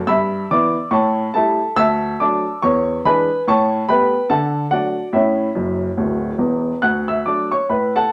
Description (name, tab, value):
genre	jazz, stride piano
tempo	142 BPM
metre	4/4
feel	swing 60% on 8ths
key	D major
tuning	A4 = 440 Hz
part	warm upright piano	solo	0.0-8.1 s	D1 to F#6	-18 LUFS	equal	none
room	wet club reverb, RT60 0.6 s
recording	none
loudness	-18 LUFS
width	mono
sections	0.0-6.8 A section; 6.8-8.1 B section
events	upright piano fill 5.6-6.8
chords	0.1 Em/G; 0.9 A7; 1.8 D; 2.6 E7; 3.4 A9; 4.3 D; 5.1 A; 6.8 D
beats	| 0.07 0.49 0.92 1.34 | 1.76 2.18 2.60 3.03 | 3.45 3.87 4.29 4.71 | 5.14 5.56 5.98 6.40 | 6.83 7.25 7.67 8.10